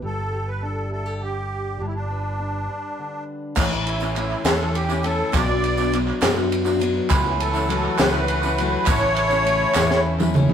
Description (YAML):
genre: indie folk with a building arrangement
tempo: 68 BPM (dotted quarters)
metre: 6/8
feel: straight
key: unclear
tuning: A4 = 440 Hz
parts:
  - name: fingerpicked steel-string acoustic guitar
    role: accompaniment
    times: 0.0-3.6 s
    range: D3 to B4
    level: -34 LUFS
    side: left 1 dB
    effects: none
  - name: fingered electric bass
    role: bass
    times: 0.0-10.5 s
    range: G1 to F#2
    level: -26 LUFS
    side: equal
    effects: none
  - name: musette accordion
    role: melody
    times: 0.1-10.0 s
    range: D4 to D5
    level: -25 LUFS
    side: equal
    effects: none
  - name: picked steel-string acoustic guitar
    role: accompaniment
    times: 3.6-10.5 s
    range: A2 to F#4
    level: -25 LUFS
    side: left 4 dB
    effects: none
  - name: compact cocktail drum kit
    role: drums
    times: 3.6-10.5 s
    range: crash cymbal, kick drum, ride cymbal, snare drum, toms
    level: -23 LUFS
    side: equal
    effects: none
  - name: group handclap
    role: percussion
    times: 3.6-10.3 s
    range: none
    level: -29 LUFS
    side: right 4 dB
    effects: none
  - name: tambourine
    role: percussion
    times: 3.6-10.4 s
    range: none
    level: -41 LUFS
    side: right 4 dB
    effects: none
  - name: glockenspiel with rubber mallets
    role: second line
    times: 7.1-10.3 s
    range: A5 to B5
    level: -28 LUFS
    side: right 5 dB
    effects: none
  - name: warm chamber string section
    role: sustained chords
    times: 7.1-10.5 s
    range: C#3 to F#4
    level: -29 LUFS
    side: left 1 dB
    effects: none
room: wet stone room reverb, RT60 1.4 s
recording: rough rehearsal-room recording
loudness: -19 LUFS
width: side -8 dB against mid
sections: 0.0-3.6 A section; 3.6-10.5 B section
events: break 2.7-3.6; drum fill 9.8-10.5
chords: 0.0 G; 3.6 A; 5.3 Bm; 7.1 F#m7/C#; 8.9 A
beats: | 0.02 0.91 | 1.79 2.68 | 3.57 4.45 | 5.34 6.22 | 7.11 7.99 | 8.88 9.76